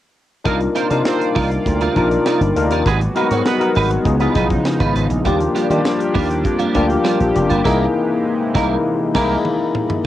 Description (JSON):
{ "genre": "polished 1980s jazz-funk pop", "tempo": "100 BPM", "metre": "4/4", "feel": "straight", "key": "C minor", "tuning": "A4 = 441 Hz", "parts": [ { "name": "tine electric piano", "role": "accompaniment", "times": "0.4-10.1 s", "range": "Bb3 to Bb4", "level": "-18 LUFS", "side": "left 4 dB", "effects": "fast stereo tremolo, analog chorus, cassette tape" }, { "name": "warm horn section", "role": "second line", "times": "0.5-3.7 s", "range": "Ab3 to C5", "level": "-25 LUFS", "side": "right 7 dB", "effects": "cassette tape" }, { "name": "chorused pulse-width pad", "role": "sustained chords", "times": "0.5-10.0 s", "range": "C3 to D5", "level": "-24 LUFS", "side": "right 1 dB", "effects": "cassette tape" }, { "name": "clean electric guitar", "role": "riff", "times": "0.5-9.4 s", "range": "G3 to Db5", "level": "-23 LUFS", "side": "right 6 dB", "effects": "ensemble chorus, cassette tape" }, { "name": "slap bass with an envelope filter", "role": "bass", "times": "0.5-9.4 s", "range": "F1 to Eb3", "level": "-19 LUFS", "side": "right 1 dB", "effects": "none" }, { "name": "tight funk drum kit", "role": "drums", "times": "0.5-10.0 s", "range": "crash cymbal, hi-hat, kick drum, snare drum, toms", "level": "-24 LUFS", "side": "right 1 dB", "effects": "cassette tape" } ], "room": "moderate small room reverb, RT60 0.6 s", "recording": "home recording on cassette", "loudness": "-15 LUFS", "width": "side -13 dB against mid", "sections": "0.5-10.0 A section", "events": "band accent 7.6-10.0; drum fill 9.4-10.0", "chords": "0.5 Cm11; 2.9 Abm7; 4.1 Db9; 5.3 Ebmaj9; 7.6 C7alt" }